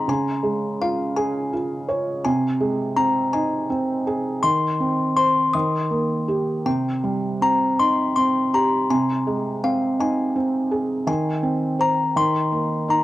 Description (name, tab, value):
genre	children's music, lullaby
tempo	55 BPM (dotted quarters)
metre	6/8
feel	rubato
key	Ab major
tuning	A4 = 440 Hz
part	music box	melody	0.0-13.0 s	F5 to Eb6	-23 LUFS	left 3 dB	cassette tape
part	felt-muted upright piano	accompaniment	0.0-13.0 s	C3 to Db5	-22 LUFS	right 2 dB	cassette tape
room	moderate spring reverb, RT60 2.6 s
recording	home recording on cassette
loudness	-19 LUFS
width	side -15 dB against mid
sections	0.0-13.0 A section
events	none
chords	0.1 Db; 2.3 Ab/C; 4.4 Cm/Eb; 5.5 Eb; 6.7 Cm; 8.9 Ab/C; 11.1 Ab/Eb; 12.2 Eb5